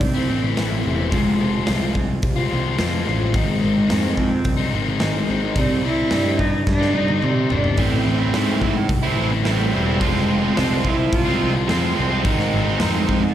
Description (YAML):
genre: quiet-loud alternative rock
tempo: 108 BPM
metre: 4/4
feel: straight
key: unclear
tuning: A4 = 437 Hz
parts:
  - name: warm cello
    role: melody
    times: 0.0-13.3 s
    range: C3 to F4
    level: -24 LUFS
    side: right 1 dB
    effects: slapback echo, tape echo
  - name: fuzz picked electric bass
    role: bass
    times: 0.0-13.3 s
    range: E1 to C3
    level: -22 LUFS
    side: equal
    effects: overdrive
  - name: big rock drum kit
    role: drums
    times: 0.0-13.2 s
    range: hi-hat, kick drum, snare drum, toms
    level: -24 LUFS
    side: equal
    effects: none
  - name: picked steel-string acoustic guitar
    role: arpeggios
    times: 0.1-7.8 s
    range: G#2 to F4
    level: -27 LUFS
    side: right 1 dB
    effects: none
  - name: distorted electric guitar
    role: riff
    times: 0.1-13.2 s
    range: G#2 to F4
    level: -25 LUFS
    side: left 11 dB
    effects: distortion, slapback echo
  - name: overdriven electric guitar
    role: riff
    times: 7.8-13.3 s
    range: G#2 to F4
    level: -23 LUFS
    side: right 10 dB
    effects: none
room: small room ambience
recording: live gig heard through the venue's PA, recital hall reverb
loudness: -17 LUFS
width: side -11 dB against mid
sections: 0.0-13.3 A section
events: cello solo 0.0-13.3; drum fill 6.7-7.8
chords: 0.0 Am; 1.1 Fm; 3.4 G#; 5.6 Cm; 7.8 Am; 10.0 Fm; 12.3 G#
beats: 0.02 0.58 | 1.13 1.69 2.24 2.79 | 3.35 3.90 4.46 5.01 | 5.57 6.12 6.68 7.24 | 7.79 8.35 8.90 9.46 | 10.02 10.58 11.13 11.69 | 12.25 12.81